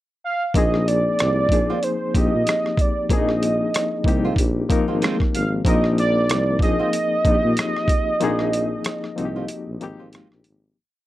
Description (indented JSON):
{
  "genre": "R&B, neo-soul",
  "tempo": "94 BPM",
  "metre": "4/4",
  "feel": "swing 56% on 16ths",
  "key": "Bb mixolydian",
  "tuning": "A4 = 440 Hz",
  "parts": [
    { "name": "warm velvety synth lead", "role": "melody", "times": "0.2-10.1 s", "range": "C5 to F5", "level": "-23 LUFS", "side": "right 2 dB", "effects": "chorus, slapback echo" },
    { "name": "barky reed electric piano", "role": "accompaniment", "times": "0.5-10.8 s", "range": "F3 to Bb4", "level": "-24 LUFS", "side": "left 5 dB", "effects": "overdrive, fast tremolo" },
    { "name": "boom bap sampler-style drum kit", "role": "drums", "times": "0.5-10.6 s", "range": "hi-hat, kick drum, rim click", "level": "-22 LUFS", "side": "right 1 dB", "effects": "none" },
    { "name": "mellow tuba", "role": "bass", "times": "0.6-10.7 s", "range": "Ab1 to Bb2", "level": "-23 LUFS", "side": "equal", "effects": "none" },
    { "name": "flamenco guitar", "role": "second line", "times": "1.7-10.3 s", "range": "Eb3 to F4", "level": "-26 LUFS", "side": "right 5 dB", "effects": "none" }
  ],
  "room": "little or no reverb",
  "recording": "dry, close 1970s-style studio recording",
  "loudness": "-18 LUFS",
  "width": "side -15 dB against mid",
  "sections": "0.0-0.5 pickup bar; 0.5-10.8 A section",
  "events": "break 8.2-10.8; fade-out 8.2-10.8",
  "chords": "0.0 N.C.; 0.5 Bb9sus4"
}